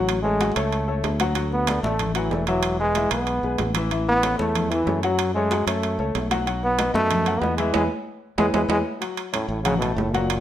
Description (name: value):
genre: latin, salsa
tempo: 188 BPM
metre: 4/4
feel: straight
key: unclear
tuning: A4 = 440 Hz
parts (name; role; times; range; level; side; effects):
- clear trombone; melody; 0.0-10.4 s; A2 to B3; -23 LUFS; equal; none
- clear concert grand piano; accompaniment; 0.0-10.4 s; E3 to C#6; -27 LUFS; left 4 dB; none
- modern bright fingered electric bass; bass; 0.0-10.4 s; E1 to F#2; -27 LUFS; equal; none
- congas; percussion; 0.1-10.4 s; none; -30 LUFS; left 1 dB; none
- timbales; percussion; 0.1-10.4 s; none; -29 LUFS; right 9 dB; none
room: moderate large studio reverb, RT60 1.0 s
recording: none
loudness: -20 LUFS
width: side -11 dB against mid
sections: 0.0-9.0 A section; 9.0-10.4 B section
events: band accent 7.7-9.0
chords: 0.1 F#m/A; 1.4 Dadd9; 2.6 E; 3.9 A; 5.2 F#m; 6.5 B; 7.7 E; 9.0 F#m